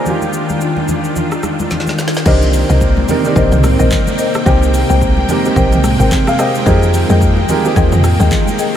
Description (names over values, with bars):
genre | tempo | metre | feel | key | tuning
amapiano | 109 BPM | 4/4 | swing 58% on 16ths | C minor | A4 = 440 Hz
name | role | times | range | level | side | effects
clear baby grand piano | accompaniment | 0.0-8.8 s | C3 to Bb5 | -18 LUFS | right 3 dB | lush chorus
string machine, violas | sustained chords | 0.0-8.8 s | C3 to G5 | -18 LUFS | equal | ensemble chorus, low-pass filter
deep house drum kit | drums | 0.1-8.7 s | crash cymbal, handclaps, hi-hat, kick drum, rim click, shaker, snare drum, toms | -18 LUFS | equal | none
congas | percussion | 0.1-8.6 s | none | -22 LUFS | left 2 dB | none
marimba with medium mallets | stabs | 2.3-8.8 s | Ab4 to G5 | -19 LUFS | left 6 dB | ping-pong delay
woody log drum bass | bass | 2.3-8.3 s | Ab1 to F2 | -13 LUFS | equal | none
room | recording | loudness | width
moderate huge ambient reverb, RT60 7.6 s | dreamy mix soaked in reverb | -10 LUFS | side -10 dB against mid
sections
0.0-2.3 A section; 2.3-8.8 B section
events
drum fill 1.7-2.3; drop 2.3-8.8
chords
0.1 Ebmaj9; 2.3 Cm7; 4.5 Abmaj9/C; 6.7 Fm11